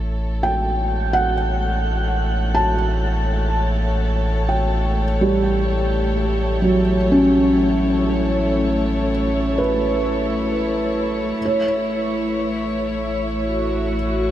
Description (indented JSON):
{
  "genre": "ambient",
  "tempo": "free time",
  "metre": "none",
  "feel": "none",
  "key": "A mixolydian",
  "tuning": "A4 = 440 Hz",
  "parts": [
    { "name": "warm chamber string section", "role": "sustained chords", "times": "0.0-14.3 s", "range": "A3 to C#5", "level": "-24 LUFS", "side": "left 1 dB", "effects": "none" },
    { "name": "warm sub bass", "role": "bass", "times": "0.0-14.3 s", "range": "A1", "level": "-23 LUFS", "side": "equal", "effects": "none" },
    { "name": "felt-muted upright piano", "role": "arpeggios", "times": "0.4-14.3 s", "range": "F#3 to A5", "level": "-20 LUFS", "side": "right 1 dB", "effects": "tape echo" }
  ],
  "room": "moderate shimmer reverb, RT60 7.9 s",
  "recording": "none",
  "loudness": "-17 LUFS",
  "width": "side -12 dB against mid",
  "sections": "0.0-14.3 A section",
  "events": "fade-in on string section 0.0-14.3",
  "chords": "0.0 A7; 11.4 Esus2/A"
}